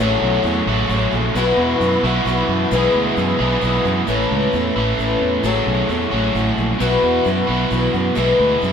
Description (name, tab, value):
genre	folk rock and heartland rock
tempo	132 BPM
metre	3/4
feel	straight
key	A major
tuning	A4 = 440 Hz
part	picked twelve-string acoustic guitar	accompaniment	0.0-8.7 s	A2 to A4	-20 LUFS	left 4 dB	none
part	tonewheel organ	sustained chords	0.0-4.1 s	A3 to G#4	-28 LUFS	equal	slow rotary speaker, chorus vibrato
part	crunchy overdriven guitar	riff	0.0-8.7 s	A2 to G#4	-19 LUFS	right 2 dB	none
part	fingered electric bass	bass	0.0-8.7 s	A1 to F#2	-21 LUFS	right 1 dB	none
room	moderate small room reverb, RT60 0.5 s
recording	band playing live in one room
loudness	-15 LUFS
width	side -7 dB against mid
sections	0.0-4.1 A section; 4.1-8.7 B section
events	none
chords	0.0 F#madd9/A; 1.4 Bsus4; 2.7 E/B; 4.1 Aadd9; 5.4 F#madd9/A; 6.8 Bsus4; 8.2 E/B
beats	| 0.00 0.45 0.91 | 1.36 1.81 2.27 | 2.72 3.17 3.63 | 4.08 4.53 4.99 | 5.44 5.89 6.35 | 6.80 7.25 7.71 | 8.16 8.62